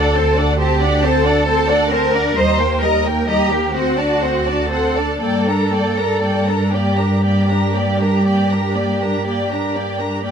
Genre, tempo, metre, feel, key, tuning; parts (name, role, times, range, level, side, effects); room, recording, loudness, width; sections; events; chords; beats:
classical, slow romantic movement for string orchestra; 39-46 BPM (dotted quarters); 12/8; rubato; G minor; A4 = 440 Hz
warm symphonic violin section; melody; 0.0-10.3 s; F#5 to Bb5; -25 LUFS; left 2 dB
warm symphonic violin section; second line; 0.0-10.3 s; Bb4 to Eb5; -22 LUFS; left 1 dB
warm symphonic viola section; accompaniment; 0.0-10.3 s; G3 to D4; -22 LUFS; equal
warm symphonic cello section; bass; 0.0-10.3 s; F#4 to C5; -20 LUFS; equal
warm symphonic double bass section; bass; 0.0-10.3 s; D2 to G2; -19 LUFS; right 1 dB
moderate studio reverb, RT60 0.9 s; minimal, uncompressed stereo recording; -14 LUFS; side -7 dB against mid
0.0-10.3 A section
0.0 D7; 2.4 Eb; 3.7 D7; 5.2 Gm
1.03 2.36 3.75 | 5.21 6.73 8.26 9.75